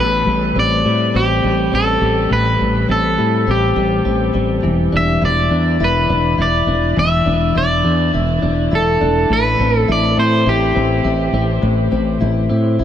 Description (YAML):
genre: dream pop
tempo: 103 BPM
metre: 4/4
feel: straight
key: unclear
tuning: A4 = 440 Hz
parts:
  - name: electric guitar at the edge of break-up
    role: melody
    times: 0.0-12.8 s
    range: G4 to E5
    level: -17 LUFS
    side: equal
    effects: tape echo
  - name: direct-recorded clean electric guitar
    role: arpeggios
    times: 0.0-12.8 s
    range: A2 to E4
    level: -18 LUFS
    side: left 3 dB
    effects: lush chorus, tape echo
  - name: fretless electric bass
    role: bass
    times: 0.0-12.8 s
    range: E1 to A2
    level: -18 LUFS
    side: right 1 dB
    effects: none
room: moderate huge ambient reverb, RT60 7.1 s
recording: none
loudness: -13 LUFS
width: side -10 dB against mid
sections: 0.0-12.8 A section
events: none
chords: 0.0 Am9; 4.6 E5; 9.3 Am7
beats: 0.56 1.15 1.73 | 2.31 2.89 3.48 4.06 | 4.64 5.22 5.80 6.39 | 6.97 7.55 8.14 8.72 | 9.30 9.88 10.47 11.05 | 11.63 12.21 12.80